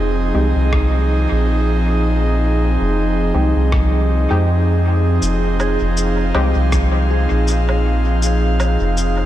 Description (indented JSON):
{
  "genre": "ambient dub",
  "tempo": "80 BPM",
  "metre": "4/4",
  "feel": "swing 57% on 16ths",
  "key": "F minor",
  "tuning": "A4 = 439 Hz",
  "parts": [
    { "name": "airy breathy pad", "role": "sustained chords", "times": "0.0-9.3 s", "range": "F3 to F5", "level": "-19 LUFS", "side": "right 1 dB", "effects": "chorus" },
    { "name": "soft dub sub bass", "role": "bass", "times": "0.0-9.3 s", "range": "F1 to F2", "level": "-16 LUFS", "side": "equal", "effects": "tube saturation" },
    { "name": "filtered dub chord stab", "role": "stabs", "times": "0.3-6.6 s", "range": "Ab3 to G4", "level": "-28 LUFS", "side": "left 1 dB", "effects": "none" },
    { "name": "electronic kick drum", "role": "drums", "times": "0.7-6.9 s", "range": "none", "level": "-20 LUFS", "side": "equal", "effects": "none" },
    { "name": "electronic rim click, cabasa and woodblock", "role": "drums", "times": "0.7-9.1 s", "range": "none", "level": "-29 LUFS", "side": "equal", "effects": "dub echo" },
    { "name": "soft synth bell", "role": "arpeggios", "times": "5.6-9.3 s", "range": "Ab4", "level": "-28 LUFS", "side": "right 2 dB", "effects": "chorus, phaser, ping-pong delay" }
  ],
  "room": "moderate cathedral reverb, RT60 5.5 s",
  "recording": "dreamy mix soaked in reverb",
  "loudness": "-14 LUFS",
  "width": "side -13 dB against mid",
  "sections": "0.0-9.3 A section",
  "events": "none",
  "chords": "0.0 Fm7"
}